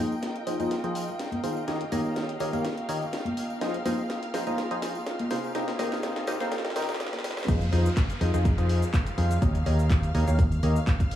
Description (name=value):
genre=piano house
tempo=124 BPM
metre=4/4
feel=swing 53% on 16ths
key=F minor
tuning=A4 = 440 Hz
part: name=warm symphonic violin section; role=sustained chords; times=0.0-11.2 s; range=F5 to F6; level=-40 LUFS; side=equal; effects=sidechain pumping, low-pass filter
part: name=percussive organ stab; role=riff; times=0.0-10.8 s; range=C3 to F5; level=-31 LUFS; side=equal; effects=chorus, phaser, cassette tape, sidechain pumping, dub echo
part: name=riser and downlifter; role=sound effects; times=3.4-11.2 s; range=none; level=-42 LUFS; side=equal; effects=none
part: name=dark chamber string section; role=texture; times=0.0-7.5 s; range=C4 to G5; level=-39 LUFS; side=equal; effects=sidechain pumping
part: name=tambourine and congas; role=percussion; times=0.1-7.5 s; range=none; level=-35 LUFS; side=left 1 dB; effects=dub echo
part: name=house drum kit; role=drums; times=0.2-11.2 s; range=handclaps, hi-hat, shaker, snare drum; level=-35 LUFS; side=equal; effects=high-pass filter on perc, high-pass filter on snare, high-pass filter on hats, high-pass filter on room
part: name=fingered electric bass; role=bass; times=7.5-10.8 s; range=Eb2 to F2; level=-24 LUFS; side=equal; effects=sidechain pumping
part: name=electronic kick drum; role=drums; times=7.5-11.1 s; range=none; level=-24 LUFS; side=equal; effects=none
room=light reverb, digital ambience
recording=echo-heavy mix, high-pass filter, small room ambience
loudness=-25 LUFS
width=side -12 dB against mid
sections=0.0-7.5 A section; 7.5-11.2 B section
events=build-up 0.0-7.5; drum fill 0.0-7.5; filter sweep on synth stab 0.0-7.5; filter sweep on violin section 0.0-7.5; filter sweep 0.0-7.5; drop 7.5-11.2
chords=0.0 Fm7; 1.7 Eb7; 3.6 Fm7; 5.5 Cm7; 7.5 Fm7; 9.4 Eb7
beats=0.23 0.71 1.20 | 1.68 2.16 2.65 3.13 | 3.61 4.10 4.58 5.07 | 5.55 6.03 6.52 7.00 | 7.49 7.97 8.45 8.94 | 9.42 9.90 10.39 10.87